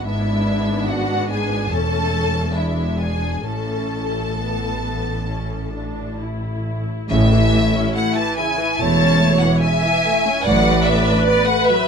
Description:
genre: classical, slow romantic movement for string orchestra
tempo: 64-74 BPM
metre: 4/4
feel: rubato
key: A major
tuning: A4 = 440 Hz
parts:
  - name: bright symphonic violin section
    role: melody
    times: 0.0-11.9 s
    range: D5 to A5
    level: -23 LUFS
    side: left 1 dB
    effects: none
  - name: warm symphonic violin section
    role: second line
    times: 0.0-11.9 s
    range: E4 to E5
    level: -24 LUFS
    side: right 1 dB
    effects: none
  - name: clear symphonic viola section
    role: accompaniment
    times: 0.0-11.9 s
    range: C#3 to B4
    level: -24 LUFS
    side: left 1 dB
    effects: none
  - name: rich symphonic double bass section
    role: bass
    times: 0.0-11.1 s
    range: E1 to A1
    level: -22 LUFS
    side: equal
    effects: none
  - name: rich studio cello section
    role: bass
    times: 0.1-11.1 s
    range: E2 to A2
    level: -23 LUFS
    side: equal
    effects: none
room: light reverb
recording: dark, warm production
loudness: -16 LUFS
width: side -6 dB against mid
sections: 0.0-7.1 A section; 7.1-11.9 B section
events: none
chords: 0.1 E7/G#; 1.7 A/E; 2.6 E7; 3.5 A; 10.5 Bm7/A

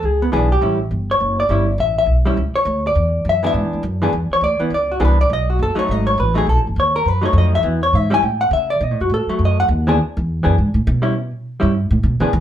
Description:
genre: jazz, small-group swing and bop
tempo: 205 BPM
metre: 4/4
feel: swing 60% on 8ths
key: unclear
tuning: A4 = 439 Hz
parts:
  - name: vintage hollow-body jazz guitar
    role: accompaniment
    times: 0.0-12.3 s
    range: E3 to G#5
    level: -17 LUFS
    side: left 1 dB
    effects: none
  - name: upright bass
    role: bass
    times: 0.0-12.4 s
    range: F#1 to D3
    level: -18 LUFS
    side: equal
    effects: none
room: wet studio reverb, RT60 0.6 s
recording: band playing live in one room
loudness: -15 LUFS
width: side -10 dB against mid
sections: 0.0-10.0 A section; 10.0-12.4 A section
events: upright bass solo 10.0-12.4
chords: 0.0 E7; 0.6 A7; 3.0 E7(no3); 5.3 B7; 7.6 E; 8.2 A; 8.8 B7; 10.0 E; 11.1 A7 (rootless)

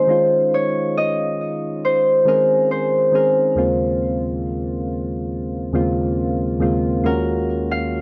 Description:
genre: R&B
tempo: 69 BPM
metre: 4/4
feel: straight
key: unclear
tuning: A4 = 440 Hz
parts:
  - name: Celtic harp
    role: melody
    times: 0.0-8.0 s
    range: Bb4 to F5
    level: -20 LUFS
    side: equal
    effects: digital delay
  - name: soft electric-piano-like synth keys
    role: accompaniment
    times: 0.0-8.0 s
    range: Eb2 to Ab4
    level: -23 LUFS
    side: equal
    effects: chorus
room: moderate plate reverb, RT60 2.5 s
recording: worn, warbling old tape, cassette tape, warbly pitch drift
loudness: -19 LUFS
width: mono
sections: 0.0-7.0 A section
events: none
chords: 0.1 Dbmaj9/Eb; 3.6 Eb13sus4; 7.0 Ebm11

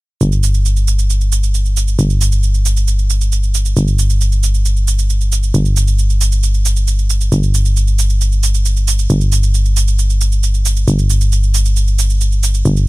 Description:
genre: uplifting trance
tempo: 135 BPM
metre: 4/4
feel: straight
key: unclear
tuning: A4 = 440 Hz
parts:
  - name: solid FM bass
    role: bass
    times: 0.2-12.9 s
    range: G1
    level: -12 LUFS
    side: equal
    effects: tube saturation
  - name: shaker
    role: drums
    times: 0.2-12.9 s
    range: none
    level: -21 LUFS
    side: right 7 dB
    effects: none
room: little or no reverb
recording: dark, warm production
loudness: -12 LUFS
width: side -20 dB against mid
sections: 0.2-12.9 A section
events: none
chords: none

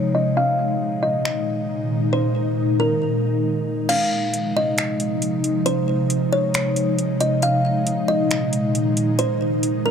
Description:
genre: hip hop, atmospheric cloud-rap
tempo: 136 BPM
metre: 4/4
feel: half-time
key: Ab major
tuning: A4 = 440 Hz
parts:
  - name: ethereal airy pad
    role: sustained chords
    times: 0.0-9.9 s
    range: Bb2 to Eb4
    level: -21 LUFS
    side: equal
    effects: ensemble chorus, built-in reverb, low-pass filter
  - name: kalimba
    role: melody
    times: 0.1-9.9 s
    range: Bb4 to F5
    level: -23 LUFS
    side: equal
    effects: low-pass filter, digital delay
  - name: smooth R&B drum kit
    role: drums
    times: 1.3-9.7 s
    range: crash cymbal, finger snaps, hi-hat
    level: -27 LUFS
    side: equal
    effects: none
room: digital ambience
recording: dark, warm production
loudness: -18 LUFS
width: side -7 dB against mid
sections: 0.0-3.9 A section; 3.9-9.9 B section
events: filter sweep 0.0-3.9; kick muted 3.9-9.9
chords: 0.4 Ebsus4; 3.9 Ab6; 7.4 Ebsus4

